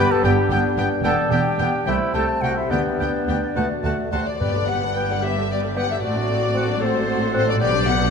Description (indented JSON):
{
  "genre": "quick classical-period movement for symphony orchestra",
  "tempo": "69-77 BPM (dotted quarters)",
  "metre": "6/8",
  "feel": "rubato",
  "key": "G major",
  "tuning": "A4 = 440 Hz",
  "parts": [
    { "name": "dark studio violin section", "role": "melody", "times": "0.0-8.1 s", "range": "C5 to A5", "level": "-27 LUFS", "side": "left 5 dB", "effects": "none" },
    { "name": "clear clarinet", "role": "second line", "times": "0.0-8.1 s", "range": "A3 to B4", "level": "-29 LUFS", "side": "left 2 dB", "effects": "none" },
    { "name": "clear oboe", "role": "second line", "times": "0.0-7.4 s", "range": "F#5 to G5", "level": "-30 LUFS", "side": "equal", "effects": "none" },
    { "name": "concert flute", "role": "second line", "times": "0.0-7.9 s", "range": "C5 to B5", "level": "-29 LUFS", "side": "left 2 dB", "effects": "none" },
    { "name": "warm studio violin section", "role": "second line", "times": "0.0-8.1 s", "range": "B3 to D5", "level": "-32 LUFS", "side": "left 1 dB", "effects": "none" },
    { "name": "mellow bassoon", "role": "accompaniment", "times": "0.0-7.4 s", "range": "G3 to D4", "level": "-28 LUFS", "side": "left 1 dB", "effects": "none" },
    { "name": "rich studio viola section", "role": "accompaniment", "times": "0.0-8.1 s", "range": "D3 to D4", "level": "-30 LUFS", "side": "right 1 dB", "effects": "none" },
    { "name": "dark French horn section", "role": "sustained chords", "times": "0.0-8.1 s", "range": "A3 to G4", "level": "-29 LUFS", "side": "left 4 dB", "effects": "none" },
    { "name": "mellow trumpet", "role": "stabs", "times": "0.0-8.1 s", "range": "D4 to D5", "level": "-29 LUFS", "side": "right 2 dB", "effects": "none" },
    { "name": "dark studio double bass section", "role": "bass", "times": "0.0-8.1 s", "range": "E1 to D2", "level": "-27 LUFS", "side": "right 3 dB", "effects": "none" },
    { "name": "warm studio cello section", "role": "bass", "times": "0.0-8.1 s", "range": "C2 to B2", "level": "-28 LUFS", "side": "right 2 dB", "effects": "none" },
    { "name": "timpani", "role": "percussion", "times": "0.0-0.2, 4.4-5.2 s", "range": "G2", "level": "-30 LUFS", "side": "equal", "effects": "none" }
  ],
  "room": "wet concert hall reverb, RT60 2.3 s",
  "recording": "minimal, uncompressed stereo recording",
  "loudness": "-18 LUFS",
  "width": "side -6 dB against mid",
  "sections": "0.0-4.4 A section; 4.4-8.1 B section",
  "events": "none",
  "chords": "0.0 G; 1.0 Em; 1.9 Am7; 2.7 G/D; 3.6 D; 4.4 G; 6.0 D7/A"
}